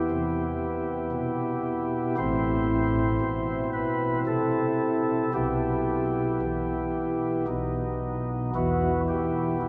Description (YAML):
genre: classical, chorale-style piece for pipe organ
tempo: 57 BPM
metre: 3/4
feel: rubato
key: E minor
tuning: A4 = 439 Hz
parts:
  - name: pipe organ, flutes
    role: solo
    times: 0.0-9.7 s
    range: A1 to C5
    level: -27 LUFS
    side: equal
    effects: none
room: wet cathedral reverb, RT60 5.4 s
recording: recorded in a church or concert hall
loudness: -27 LUFS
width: mono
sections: 0.0-9.7 A section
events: none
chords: 0.0 Em; 2.2 Am; 5.3 Em/B; 7.5 B; 8.6 Em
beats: 0.11 1.13 | 2.19 3.22 4.27 | 5.34 6.43 7.50 | 8.55 9.61